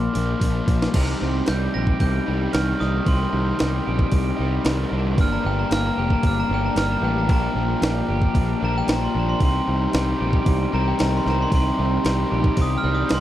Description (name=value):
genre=indie rock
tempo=113 BPM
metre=4/4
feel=straight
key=C minor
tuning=A4 = 440 Hz
part: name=glockenspiel with hard plastic mallets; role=melody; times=0.0-13.2 s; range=G5 to Bb6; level=-27 LUFS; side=equal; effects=tape echo
part: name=raw garage guitar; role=riff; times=0.0-13.2 s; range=F3 to Eb4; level=-26 LUFS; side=left 5 dB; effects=overdrive
part: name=picked electric bass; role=bass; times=0.0-13.2 s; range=F1 to C2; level=-24 LUFS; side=equal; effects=none
part: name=breakbeat sampler-style drum kit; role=drums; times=0.2-13.2 s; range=crash cymbal, hi-hat, kick drum, snare drum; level=-21 LUFS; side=equal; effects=none
part: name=crunchy overdriven guitar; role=riff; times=1.0-13.2 s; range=G2 to G4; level=-29 LUFS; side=right 9 dB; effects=analog chorus, tape echo
part: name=brassy analog pad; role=sustained chords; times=9.4-13.2 s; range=Eb4 to G5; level=-34 LUFS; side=right 6 dB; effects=none
room=little or no reverb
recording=dark, warm production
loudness=-19 LUFS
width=side -12 dB against mid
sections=0.9-13.2 A section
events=drum fill 0.4-0.9; glockenspiel solo 0.9-13.2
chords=0.0 Bb; 0.9 Cm; 5.2 Gm; 7.3 Bb6; 9.4 Cmadd9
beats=0.42 | 0.95 1.48 2.01 2.54 | 3.07 3.60 4.13 4.66 | 5.18 5.71 6.24 6.77 | 7.30 7.83 8.36 8.89 | 9.41 9.94 10.47 11.00 | 11.53 12.05 12.58 13.11